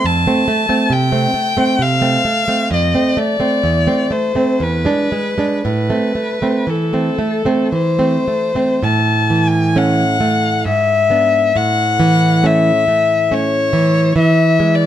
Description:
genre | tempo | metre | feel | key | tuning
romantic duo for violin and classical guitar | 51-71 BPM | 3/4 | rubato | A minor, A major from 8.8 s | A4 = 437 Hz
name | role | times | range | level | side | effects
rich violin | melody | 0.0-14.9 s | A4 to A5 | -16 LUFS | left 4 dB | none
nylon-string guitar | accompaniment | 0.0-14.9 s | E2 to D4 | -15 LUFS | right 2 dB | none
room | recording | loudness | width
light reverb | close, detailed microphones | -13 LUFS | side -11 dB against mid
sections
0.0-8.8 A section; 8.8-14.9 B section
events
none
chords
0.1 F; 3.6 Am/E; 4.6 E7; 5.6 Am; 8.8 A; 10.7 E7/G#; 11.6 A; 14.2 E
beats
| 0.05 0.92 1.81 | 2.73 3.65 4.62 | 5.65 6.68 7.73 | 8.83 9.77 10.67 | 11.57 12.45 13.32 | 14.18

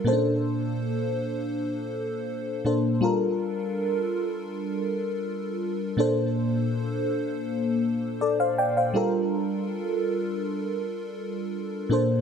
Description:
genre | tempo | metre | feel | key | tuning
R&B | 81 BPM | 4/4 | straight | G minor | A4 = 440 Hz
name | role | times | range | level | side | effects
FM electric piano with soft pad layer | solo | 0.0-12.2 s | Bb2 to G5 | -24 LUFS | equal | chorus, phaser
room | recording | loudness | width
moderate plate reverb, RT60 2.9 s | none | -24 LUFS | side -7 dB against mid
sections
0.0-12.2 A section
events
none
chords
0.1 Bbmaj7; 3.0 Gm9; 6.0 Bbmaj7; 8.9 Gm9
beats
| 0.06 0.80 1.54 2.28 | 3.02 3.77 4.50 5.25 | 5.99 6.73 7.47 8.21 | 8.95 9.69 10.43 11.17 | 11.91

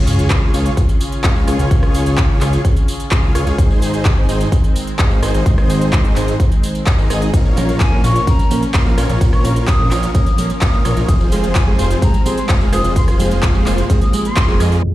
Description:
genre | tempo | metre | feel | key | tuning
EDM, festival progressive house | 128 BPM | 4/4 | straight | unclear | A4 = 440 Hz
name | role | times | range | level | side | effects
lush unison pad | sustained chords | 0.0-14.9 s | Db3 to Db5 | -25 LUFS | left 1 dB | chorus, vintage 12-bit sampler grit, sidechain pumping
big supersaw lead | riff | 0.0-14.8 s | Eb4 to F5 | -23 LUFS | right 1 dB | sidechain pumping, ping-pong delay
fat analog bass | bass | 0.0-14.8 s | F1 to F2 | -18 LUFS | equal | sidechain pumping
sub drop and impact | sound effects | 0.0-1.7, 14.8-14.9 s | none | -22 LUFS | equal | none
big-room dance drum kit | drums | 0.1-14.9 s | crash cymbal, handclaps, hi-hat, ride cymbal, rim click, tambourine | -24 LUFS | equal | none
electronic kick drum | drums | 0.3-14.5 s | none | -14 LUFS | equal | none
fingerpicked steel-string acoustic guitar | accompaniment | 7.6-14.8 s | Bb2 to Bb4 | -22 LUFS | right 2 dB | vintage 12-bit sampler grit, sidechain pumping
concert flute | melody | 7.8-14.6 s | Ab5 to Eb6 | -24 LUFS | left 1 dB | ping-pong delay
room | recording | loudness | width
digital ambience | played on a big sound system in a bare room, large studio reverb, low-pass filter | -12 LUFS | side -15 dB against mid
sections
0.0-14.8 A section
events
drop 0.0-14.8; impact 0.0-1.7; band accent 14.4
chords
0.0 Db; 3.6 Ab; 7.3 Bbm; 11.1 Fm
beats
0.30 0.77 1.24 | 1.71 2.18 2.65 3.12 | 3.58 4.05 4.52 4.99 | 5.46 5.93 6.40 6.87 | 7.33 7.80 8.27 8.74 | 9.21 9.68 10.15 10.62 | 11.09 11.55 12.02 12.49 | 12.96 13.43 13.90 14.37 | 14.84

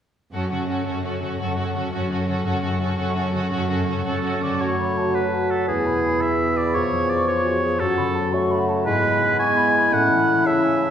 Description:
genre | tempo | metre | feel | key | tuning
classical | 113 BPM (dotted quarters) | 6/8 | straight | F# minor | A4 = 440 Hz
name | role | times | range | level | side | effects
warm symphonic violin section | melody | 0.3-4.6 s | A4 | -34 LUFS | left 3 dB | none
warm symphonic violin section | second line | 0.3-4.6 s | F#4 | -30 LUFS | left 2 dB | none
warm studio viola section | accompaniment | 0.3-4.6 s | C#4 | -30 LUFS | right 2 dB | none
concert harp | arpeggios | 0.3-10.9 s | E2 to G#5 | -28 LUFS | left 4 dB | none
rich chamber cello section | bass | 0.3-4.5 s | F#2 | -27 LUFS | right 3 dB | none
clear oboe | second line | 4.1-10.9 s | G#4 to G#5 | -22 LUFS | right 1 dB | none
mellow hollow concert flute | second line | 4.6-10.9 s | G#5 to C#6 | -29 LUFS | equal | none
warm clarinet | second line | 4.6-10.9 s | B3 to B4 | -30 LUFS | equal | none
mellow bassoon | accompaniment | 4.6-10.9 s | C#3 to A3 | -24 LUFS | right 2 dB | none
mellow French horn section | sustained chords | 4.6-10.9 s | A3 to G#4 | -24 LUFS | left 2 dB | none
room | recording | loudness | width
wet concert hall reverb, RT60 1.9 s | recorded in a church or concert hall | -19 LUFS | side -9 dB against mid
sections
0.3-4.6 A section; 4.6-10.9 B section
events
none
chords
0.3 F#m; 5.7 E; 6.8 C#7/E#; 7.8 F#m; 8.9 E/G#; 9.9 A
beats
| 0.33 0.87 | 1.40 1.93 | 2.46 2.99 | 3.52 4.06 | 4.61 5.15 | 5.69 6.22 | 6.75 7.28 | 7.81 8.34 | 8.86 9.39 | 9.92 10.46

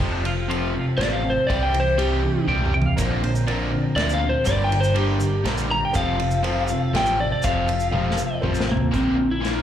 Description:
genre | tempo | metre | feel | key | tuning
folk rock and heartland rock | 121 BPM | 3/4 | straight | unclear | A4 = 440 Hz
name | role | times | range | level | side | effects
twelve-string electric guitar | second line | 0.0-3.8 s | D4 to G5 | -30 LUFS | right 1 dB | tremolo, slapback echo
picked steel-string acoustic guitar | accompaniment | 0.0-9.6 s | G2 to Bb4 | -32 LUFS | left 6 dB | slapback echo
mellow accordion | sustained chords | 0.0-8.9 s | D3 to Bb4 | -36 LUFS | left 2 dB | none
crunchy overdriven guitar | riff | 0.0-9.6 s | F2 to Bb3 | -25 LUFS | equal | slapback echo
deep dub picked electric bass | bass | 0.0-9.6 s | F1 to D2 | -25 LUFS | equal | none
unplugged drum kit | drums | 0.0-9.6 s | hi-hat, kick drum, ride cymbal, snare drum, toms | -28 LUFS | right 1 dB | none
electric slide guitar | melody | 1.0-9.6 s | Bb3 to Bb5 | -23 LUFS | equal | slapback echo
clear upright piano | accompaniment | 3.0-8.9 s | F4 to E5 | -37 LUFS | right 1 dB | none
tube shaker | percussion | 3.0-8.7 s | none | -38 LUFS | right 2 dB | none
room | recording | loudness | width
light reverb, small room ambience | live gig heard through the venue's PA, club reverb | -19 LUFS | side -10 dB against mid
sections
0.0-8.9 A section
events
electric slide guitar solo 0.0-8.9; drum fill 2.5-3.0, 7.9-8.9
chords
0.0 F; 1.5 C; 3.0 Bbadd9; 4.5 Gm; 6.0 F; 8.9 Bbadd9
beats
0.49 0.98 | 1.48 1.98 2.48 | 2.97 3.47 3.97 | 4.46 4.96 5.46 | 5.95 6.45 6.94 | 7.44 7.93 8.43 | 8.93 9.42

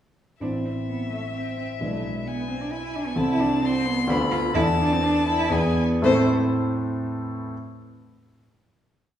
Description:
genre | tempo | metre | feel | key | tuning
quick classical-period movement for piano trio | 118-134 BPM | 3/4 | rubato | A minor | A4 = 440 Hz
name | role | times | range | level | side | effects
rich violin | melody | 0.4-6.3 s | C5 to C6 | -28 LUFS | left 4 dB | none
warm cello | second line | 0.4-6.3 s | G#3 to F4 | -26 LUFS | right 2 dB | none
clear grand piano | accompaniment | 0.4-7.5 s | A1 to E5 | -24 LUFS | equal | none
room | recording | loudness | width
wet recital hall reverb, RT60 1.5 s | heard from further back in the room, small room ambience | -21 LUFS | side -10 dB against mid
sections
0.4-6.0 A section; 6.0-7.5 final chord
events
slowing down 2.5-6.0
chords
0.4 Am; 1.8 E7/B; 3.2 Am/C; 4.1 Bm7b5/D; 4.6 E7sus4; 5.5 E7; 6.0 Am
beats
| 0.43 0.89 1.36 | 1.82 2.27 2.72 | 3.18 3.64 4.10 | 4.56 5.04 5.53 | 6.03 6.53 7.02

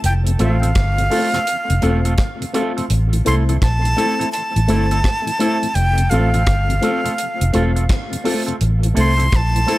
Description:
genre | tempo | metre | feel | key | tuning
roots reggae | 84 BPM | 4/4 | swing 64% on 16ths | unclear | A4 = 440 Hz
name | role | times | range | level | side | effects
vintage muted fingered electric bass | bass | 0.0-9.6 s | E1 to C2 | -16 LUFS | equal | none
deep reggae drum kit | drums | 0.0-9.8 s | hi-hat, kick drum, rim click | -22 LUFS | equal | none
breathy bright jazz flute | melody | 0.1-9.8 s | F5 to C6 | -21 LUFS | equal | tape echo
mellow tonewheel organ | accompaniment | 0.3-9.8 s | F2 to F4 | -28 LUFS | left 2 dB | chorus vibrato, slow rotary speaker, tape echo
electric guitar with an envelope filter | accompaniment | 0.4-9.8 s | A3 to A4 | -26 LUFS | right 4 dB | tape echo
dark upright piano | stabs | 0.4-9.8 s | A3 to A4 | -23 LUFS | left 3 dB | none
room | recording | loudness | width
light reverb, small room ambience | none | -15 LUFS | side -17 dB against mid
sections
0.0-9.8 A section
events
none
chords
0.0 F; 2.9 Am; 5.8 F; 8.6 Am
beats
| 0.04 0.76 1.47 2.18 | 2.90 3.61 4.33 5.04 | 5.75 6.47 7.18 7.89 | 8.61 9.32

